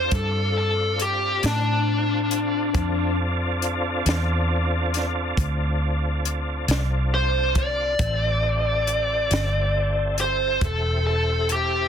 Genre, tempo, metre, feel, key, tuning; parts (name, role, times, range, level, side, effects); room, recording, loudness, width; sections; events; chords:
slow blues; 46 BPM (dotted quarters); 12/8; straight; A4 = 439 Hz
dark smooth lead guitar; melody; 0.0-11.9 s; D4 to D5; -23 LUFS; left 1 dB; overdrive
tonewheel organ; sustained chords; 0.0-11.9 s; C4 to A4; -29 LUFS; equal; slow rotary speaker, chorus vibrato
vintage muted fingered electric bass; bass; 0.0-11.9 s; E1 to A2; -24 LUFS; equal
compact cocktail drum kit; drums; 0.1-11.7 s; hi-hat, kick drum, snare drum; -26 LUFS; equal
light reverb; dense, heavily limited modern master; -20 LUFS; side -8 dB against mid
0.0-11.9 A section
lead electric guitar solo 0.0-11.9
0.0 Dm7; 8.0 Am7